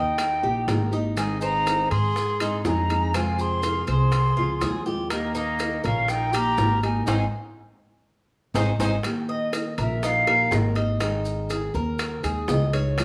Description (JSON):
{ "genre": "latin, Cuban son and guajira", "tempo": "122 BPM", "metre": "4/4", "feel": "straight", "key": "Ab major", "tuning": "A4 = 440 Hz", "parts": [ { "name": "concert flute", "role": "melody", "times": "0.0-10.8 s", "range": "Eb5 to C6", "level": "-28 LUFS", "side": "equal", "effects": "none" }, { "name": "clear trumpet", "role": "second line", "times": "0.0-8.9 s", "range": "Bb3 to Ab4", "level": "-36 LUFS", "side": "equal", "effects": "none" }, { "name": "nylon-string guitar", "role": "accompaniment", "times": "0.0-13.0 s", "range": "C3 to Ab4", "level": "-33 LUFS", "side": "equal", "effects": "none" }, { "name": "Cuban tres", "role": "arpeggios", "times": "0.0-13.0 s", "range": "C4 to Eb5", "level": "-33 LUFS", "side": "equal", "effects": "none" }, { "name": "upright bass", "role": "bass", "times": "0.0-13.0 s", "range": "Ab1 to Ab2", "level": "-28 LUFS", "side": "equal", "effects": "none" }, { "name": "bongos", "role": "percussion", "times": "0.2-13.0 s", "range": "none", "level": "-36 LUFS", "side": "equal", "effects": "none" }, { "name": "maracas", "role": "percussion", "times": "0.2-13.0 s", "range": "none", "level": "-44 LUFS", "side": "equal", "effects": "none" }, { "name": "timbales", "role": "percussion", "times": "0.2-13.0 s", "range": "none", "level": "-36 LUFS", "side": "equal", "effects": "none" } ], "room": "moderate large studio reverb, RT60 1.2 s", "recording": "none", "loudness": "-24 LUFS", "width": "mono", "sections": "0.0-9.0 A section; 9.0-13.0 B section", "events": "band accent 7.1-9.0; drum fill 8.6-9.0; flute solo 9.0-13.0", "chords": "0.0 Eb; 1.2 Ab; 3.1 Fm; 5.1 Eb; 7.1 Ab; 9.0 Eb; 11.0 Absus2" }